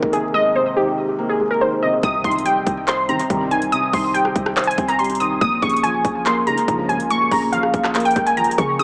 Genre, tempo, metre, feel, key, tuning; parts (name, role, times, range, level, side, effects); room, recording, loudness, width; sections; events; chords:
hip hop, trap; 142 BPM; 4/4; half-time; C phrygian; A4 = 440 Hz
warbly dusty pluck; melody; 0.0-8.8 s; G4 to Eb6; -18 LUFS; equal; chorus, tape echo
felt-muted upright piano; accompaniment; 0.0-8.8 s; Ab2 to C5; -22 LUFS; equal; tape echo
warm 808-style bass; bass; 0.0-8.8 s; Ab1 to Db3; -31 LUFS; equal
trap drum kit; drums; 0.0-8.8 s; handclaps, hi-hat, kick drum, rim click; -24 LUFS; equal; overdrive, tape echo
impact; sound effects; 2.2-3.7 s; -38 LUFS; equal
mellow synth brass; stabs; 3.1-3.6, 6.5-7.0 s; Bb1 to Eb3; -30 LUFS; equal; chorus, tape echo
light reverb; echo-heavy mix, vinyl crackle, small speaker sound; -16 LUFS; side -32 dB against mid
0.0-2.0 A section; 2.0-8.8 B section
impact 2.0-3.7
0.0 Abadd9; 2.0 Cm; 5.4 Bbm7